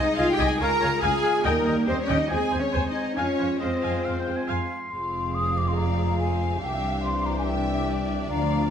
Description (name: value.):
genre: cinematic, heroic adventure film score.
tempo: 141 BPM.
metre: 4/4.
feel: straight.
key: F dorian from 4.9 s.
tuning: A4 = 440 Hz.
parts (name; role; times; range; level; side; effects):
clear studio violin section; melody; 0.0-8.7 s; Bb4 to Bb5; -34 LUFS; left 3 dB; none.
bright clarinet; second line; 0.0-4.8 s; C5 to F5; -36 LUFS; left 2 dB; none.
clear oboe; second line; 0.0-4.9 s; Eb5 to C6; -34 LUFS; right 1 dB; none.
mellow hollow concert flute; second line; 0.0-8.7 s; Bb4 to Eb6; -30 LUFS; left 2 dB; none.
rich studio violin section; second line; 0.0-8.7 s; Bb4 to Bb5; -34 LUFS; left 2 dB; none.
rich symphonic viola section; accompaniment; 0.0-8.7 s; C4 to Ab5; -32 LUFS; left 2 dB; none.
mellow French horn section; sustained chords; 0.0-8.7 s; E3 to F4; -30 LUFS; left 4 dB; none.
rich symphonic double bass section; bass; 0.0-8.7 s; F1 to F2; -29 LUFS; right 2 dB; none.
warm symphonic cello section; bass; 0.0-8.7 s; C2 to Bb4; -29 LUFS; right 2 dB; none.
room: moderate scoring stage reverb, RT60 1.6 s.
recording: none.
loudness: -22 LUFS.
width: side -8 dB against mid.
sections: 0.0-4.9 A section; 4.9-8.7 B section.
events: none.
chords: 0.0 Ab; 0.6 Db; 1.5 Eb; 2.3 Ab/Eb; 3.2 Fm; 6.6 Cadd9.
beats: 0.18 0.60 1.03 | 1.45 1.88 2.30 2.73 | 3.17 3.61 4.05 4.49 | 4.92 5.35 5.77 6.20 | 6.63 7.05 7.47 7.89 | 8.31.